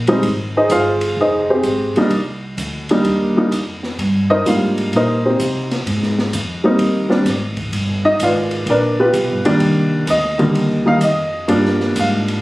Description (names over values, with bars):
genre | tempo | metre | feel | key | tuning
jazz piano trio | 128 BPM | 4/4 | swing 67% on 8ths | C minor | A4 = 441 Hz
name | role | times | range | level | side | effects
upright bass | bass | 0.0-12.4 s | F1 to C3 | -22 LUFS | equal | none
dark baby grand piano | melody | 0.1-12.4 s | D3 to F5 | -14 LUFS | equal | none
open jazz drum kit | drums | 0.1-12.3 s | hi-hat, kick drum, ride cymbal, snare drum | -26 LUFS | equal | none
room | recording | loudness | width
light reverb | recorded on a phone in the room, studio reverb | -14 LUFS | side -18 dB against mid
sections
0.0-12.4 A section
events
grand piano solo 0.0-12.4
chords
0.0 Fm9; 2.1 Cm7; 5.9 Abmaj7; 7.7 G7#9; 9.6 Cm7; 11.5 Gm7